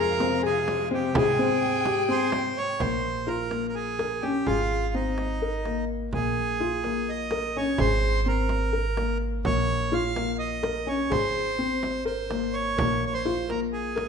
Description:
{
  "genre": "contemporary instrumental, chamber music in an uneven meter",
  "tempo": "253 BPM (eighths)",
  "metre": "7/8",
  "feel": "straight",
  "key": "unclear",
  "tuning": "A4 = 440 Hz",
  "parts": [
    { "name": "accordion", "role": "melody", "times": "0.0-14.1 s", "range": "Eb4 to F5", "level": "-28 LUFS", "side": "right 4 dB", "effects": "none" },
    { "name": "clear symphonic string section", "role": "sustained chords", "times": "0.0-2.8 s", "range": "C3 to G5", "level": "-31 LUFS", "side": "left 2 dB", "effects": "none" },
    { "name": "felt-muted upright piano", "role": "arpeggios", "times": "0.0-14.1 s", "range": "Bb3 to Bb4", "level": "-28 LUFS", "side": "left 5 dB", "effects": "none" },
    { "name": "upright bass", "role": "bass", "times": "0.0-14.1 s", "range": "Ab1 to Ab2", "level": "-32 LUFS", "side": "right 2 dB", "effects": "none" },
    { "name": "frame drum", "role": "percussion", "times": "0.2-14.1 s", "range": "none", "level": "-33 LUFS", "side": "right 2 dB", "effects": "none" }
  ],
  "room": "wet recital hall reverb, RT60 1.3 s",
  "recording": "recorded in a church or concert hall, nothing above 10.9 kHz",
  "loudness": "-24 LUFS",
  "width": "side -6 dB against mid",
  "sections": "0.0-2.8 A section; 2.8-14.1 B section",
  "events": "none",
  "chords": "0.0 Fm; 1.1 Abmaj7; 2.8 Bbm7; 4.5 Abadd9; 6.1 Bbm7; 7.8 Abadd9; 9.4 Bbm; 11.1 Abadd9; 12.8 Bbm7"
}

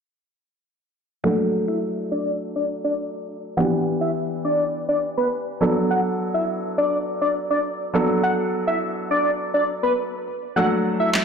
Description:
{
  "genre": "dance-pop",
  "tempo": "103 BPM",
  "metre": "4/4",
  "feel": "straight",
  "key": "D major",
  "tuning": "A4 = 440 Hz",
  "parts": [
    { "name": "wide unison lead", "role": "melody", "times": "1.2-11.1 s", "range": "B4 to F#5", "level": "-23 LUFS", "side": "equal", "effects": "low-pass filter, ping-pong delay" },
    { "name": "clear baby grand piano", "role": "accompaniment", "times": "1.2-11.2 s", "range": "E3 to A4", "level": "-23 LUFS", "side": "equal", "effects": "low-pass filter" },
    { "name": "electronic handclaps and snare drum", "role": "drums", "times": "11.1-11.2 s", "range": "none", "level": "-18 LUFS", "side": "equal", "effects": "none" }
  ],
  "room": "moderate lush hall reverb, RT60 2.8 s",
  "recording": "played on a big sound system in a bare room, large studio reverb",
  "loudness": "-20 LUFS",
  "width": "side -6 dB against mid",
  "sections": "1.2-11.2 A section",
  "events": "filter sweep 1.2-11.2",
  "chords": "1.2 D; 3.6 Em7; 5.6 Bm7; 10.6 D"
}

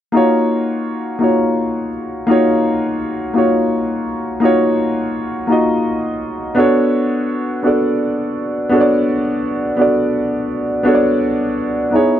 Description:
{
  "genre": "R&B",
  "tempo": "56 BPM (dotted quarters)",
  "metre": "6/8",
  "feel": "straight",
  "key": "unclear",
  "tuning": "A4 = 440 Hz",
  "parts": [
    { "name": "warm grand piano", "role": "solo", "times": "0.1-12.2 s", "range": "Bb3 to Eb5", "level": "-14 LUFS", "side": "equal", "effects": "none" }
  ],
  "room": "light reverb",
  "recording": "dry, close 1970s-style studio recording",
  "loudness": "-14 LUFS",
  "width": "side -11 dB against mid",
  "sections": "0.1-12.2 A section",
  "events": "none",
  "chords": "0.1 Ebm9; 6.6 Bm9"
}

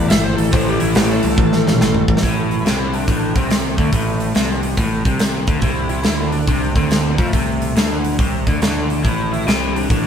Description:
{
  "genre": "blues rock power trio and southern rock",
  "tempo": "141 BPM",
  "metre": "4/4",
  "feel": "swing 66% on 8ths",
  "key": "A minor",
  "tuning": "A4 = 442 Hz",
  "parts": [
    { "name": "lead guitar through a small cranked amp", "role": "melody", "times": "0.0-10.1 s", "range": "A3 to E5", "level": "-24 LUFS", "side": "left 3 dB", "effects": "overdrive" },
    { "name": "crunchy overdriven guitar", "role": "riff", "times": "0.0-10.1 s", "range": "A2 to A3", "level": "-20 LUFS", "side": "left 1 dB", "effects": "none" },
    { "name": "growling picked electric bass", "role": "bass", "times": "0.0-10.1 s", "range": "G1 to F2", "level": "-22 LUFS", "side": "equal", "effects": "overdrive" },
    { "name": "big rock drum kit", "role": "drums", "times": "0.1-10.0 s", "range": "hi-hat, kick drum, snare drum, toms", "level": "-18 LUFS", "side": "right 1 dB", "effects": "none" }
  ],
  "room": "light reverb",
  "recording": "band playing live in one room",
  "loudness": "-15 LUFS",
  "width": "side -8 dB against mid",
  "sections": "0.0-2.2 A section; 2.2-10.1 B section",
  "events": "lead electric guitar solo 0.0-2.2; drum fill 1.4-2.2",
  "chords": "0.0 A5; 2.2 Am; 5.6 Csus2; 9.0 Am"
}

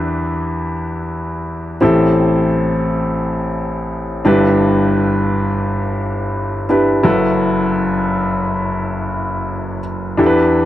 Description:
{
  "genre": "pop",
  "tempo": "free time",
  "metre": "none",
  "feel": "none",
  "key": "E minor",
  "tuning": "A4 = 441 Hz",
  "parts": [
    { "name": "clear grand piano", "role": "solo", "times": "0.0-10.7 s", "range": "F#1 to B4", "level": "-14 LUFS", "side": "equal", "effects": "none" }
  ],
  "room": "moderate booth ambience, RT60 0.2 s",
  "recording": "dry, close 1970s-style studio recording",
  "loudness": "-15 LUFS",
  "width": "side -13 dB against mid",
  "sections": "0.0-10.7 A section",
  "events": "none",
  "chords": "0.0 Em7; 1.8 Am7; 4.3 Em7/G; 7.0 B7sus4/F#"
}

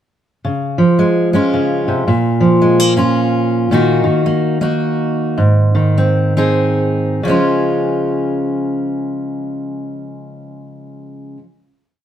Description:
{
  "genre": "folk, solo fingerstyle acoustic guitar",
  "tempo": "91-110 BPM",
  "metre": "3/4",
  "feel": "swing 62% on 8ths",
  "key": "Db major",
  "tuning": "A4 = 440 Hz",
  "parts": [
    { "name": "fingerpicked steel-string acoustic guitar", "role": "solo", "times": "0.4-11.4 s", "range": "Ab2 to Ab4", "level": "-13 LUFS", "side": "equal", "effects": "none" }
  ],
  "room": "moderate stone room reverb, RT60 1.0 s",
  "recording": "band playing live in one room",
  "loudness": "-13 LUFS",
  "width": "side -10 dB against mid",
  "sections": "0.4-7.2 interlude; 7.2-11.2 final chord",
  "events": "slowing down 3.7-7.2",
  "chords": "0.4 Db; 2.1 Bbm; 3.7 Ebm/Bb; 5.4 Ab; 7.2 Db"
}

